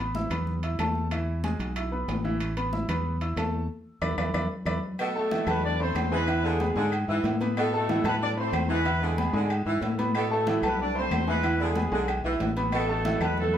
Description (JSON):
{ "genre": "latin, salsa", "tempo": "186 BPM", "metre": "4/4", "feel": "straight", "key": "A harmonic minor", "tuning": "A4 = 440 Hz", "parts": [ { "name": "bright upright piano", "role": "accompaniment", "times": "0.0-13.6 s", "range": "E3 to E6", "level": "-31 LUFS", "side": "equal", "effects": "none" }, { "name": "fingered electric bass", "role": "bass", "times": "0.0-13.6 s", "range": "A1 to A2", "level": "-30 LUFS", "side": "equal", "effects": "none" }, { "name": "congas", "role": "percussion", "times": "0.1-13.6 s", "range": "none", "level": "-34 LUFS", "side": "left 3 dB", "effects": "none" }, { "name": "timbales and agogo bells", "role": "percussion", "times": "0.1-13.4 s", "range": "none", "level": "-36 LUFS", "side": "right 2 dB", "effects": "none" }, { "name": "claves", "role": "percussion", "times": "0.3-13.4 s", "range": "none", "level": "-40 LUFS", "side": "left 4 dB", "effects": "none" }, { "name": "dark horn section", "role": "melody", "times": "5.0-13.6 s", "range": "G#3 to D5", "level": "-30 LUFS", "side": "equal", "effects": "tape echo" }, { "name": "clear saxophone section", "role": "second line", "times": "5.0-13.4 s", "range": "B2 to E3", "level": "-32 LUFS", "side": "right 1 dB", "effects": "none" } ], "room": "wet studio reverb, RT60 0.6 s", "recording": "heard from further back in the room", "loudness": "-24 LUFS", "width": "side -10 dB against mid", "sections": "0.0-5.0 A section; 5.0-13.6 B section", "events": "drum fill 3.7-5.0; band accent 3.7-5.0", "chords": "0.0 Asus2; 1.1 E; 2.4 Asus2; 3.7 E5; 5.0 Amadd9; 6.3 E7; 7.6 Amadd9; 8.9 E7; 10.1 Amadd9; 11.4 E7; 12.7 Asus2", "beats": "0.15 0.47 0.79 | 1.11 1.44 1.76 2.08 | 2.41 2.73 3.05 3.37 | 3.70 4.02 4.34 4.67 | 4.99 5.31 5.63 5.96 | 6.28 6.60 6.92 7.25 | 7.57 7.89 8.21 8.53 | 8.86 9.18 9.50 9.82 | 10.15 10.47 10.79 11.11 | 11.44 11.76 12.08 12.40 | 12.73 13.05 13.37" }